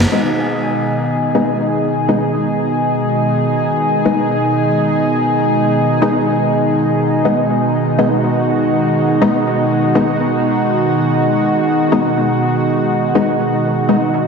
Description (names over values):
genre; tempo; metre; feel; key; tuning
breakbeat; 122 BPM; 4/4; straight; unclear; A4 = 440 Hz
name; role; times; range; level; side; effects
lush unison pad; sustained chords; 0.0-14.3 s; Cb3 to Ab4; -14 LUFS; equal; chorus
orchestra-hit-like synth stab; stabs; 0.1-14.0 s; Ab3 to Eb4; -18 LUFS; left 2 dB; built-in reverb, dub echo
room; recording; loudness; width
wet plate reverb, RT60 1.4 s, small room ambience; heavily compressed radio sound; -13 LUFS; side -5 dB against mid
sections
0.1-14.3 A section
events
none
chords
0.1 Abm